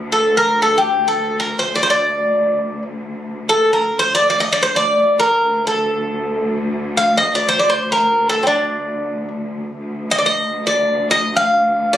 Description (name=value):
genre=Turkish makam ensemble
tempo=free time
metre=none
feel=none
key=D makam kurdi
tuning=A4 = 440 Hz
part: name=bright studio cello section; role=drone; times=0.0-12.0 s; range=D2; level=-26 LUFS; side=equal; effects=none
part: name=Greek bouzouki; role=melody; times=0.1-12.0 s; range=C4 to F5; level=-14 LUFS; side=equal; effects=none
room=light reverb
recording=recorded on a phone in the room, studio ambience, lossy compression artefacts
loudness=-14 LUFS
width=side -11 dB against mid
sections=0.0-9.8 A section; 9.8-12.0 A section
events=none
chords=none